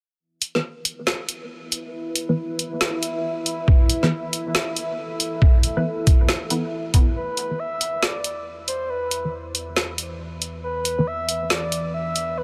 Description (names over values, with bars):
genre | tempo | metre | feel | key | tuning
deep dubstep | 138 BPM | 4/4 | swing 62% on 16ths, half-time | unclear | A4 = 440 Hz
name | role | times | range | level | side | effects
deep dark ambient pad | sustained chords | 1.4-12.4 s | E3 to E5 | -33 LUFS | equal | chorus, built-in reverb
deep house drum kit | drums | 0.4-12.3 s | hi-hat, snare drum | -26 LUFS | equal | none
filtered dub chord stab | stabs | 0.6-11.1 s | E3 to B4 | -29 LUFS | equal | phaser, lush chorus, dub echo
electronic kick drum | drums | 3.7-7.0 s | none | -17 LUFS | equal | none
breathy flute-like synth lead | melody | 7.2-12.4 s | B4 to E5 | -29 LUFS | equal | chorus, dub echo
room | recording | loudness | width
light reverb | none | -23 LUFS | mono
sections
0.2-7.2 A section; 7.2-12.4 B section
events
filter sweep on synth stab 0.2-7.2, 7.2-12.4; build-up 7.2-12.4; filter sweep on ambient pad 7.2-12.4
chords
0.2 E5